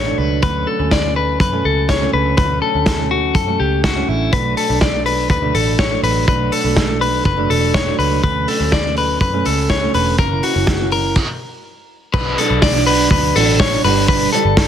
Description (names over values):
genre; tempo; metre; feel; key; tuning
jangly indie pop; 123 BPM; 4/4; straight; B minor; A4 = 442 Hz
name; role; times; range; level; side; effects
fingerpicked steel-string acoustic guitar; accompaniment; 0.0-14.7 s; G2 to D4; -21 LUFS; right 10 dB; none
clean electric guitar; arpeggios; 0.0-14.7 s; E4 to D5; -18 LUFS; left 6 dB; digital delay
vintage muted picked electric bass; bass; 0.0-14.7 s; E1 to F#2; -20 LUFS; equal; none
vintage drum kit; drums; 0.4-14.7 s; crash cymbal, hi-hat, kick drum, snare drum; -18 LUFS; right 1 dB; soft clipping on kick
room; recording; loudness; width
light reverb, small room reverb; dense, heavily limited modern master; -14 LUFS; side -9 dB against mid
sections
0.0-12.1 A section; 12.1-14.7 B section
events
stop 11.2-12.1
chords
0.4 Dmaj7; 4.3 Bm7; 10.2 F#7; 12.1 Bm; 13.8 G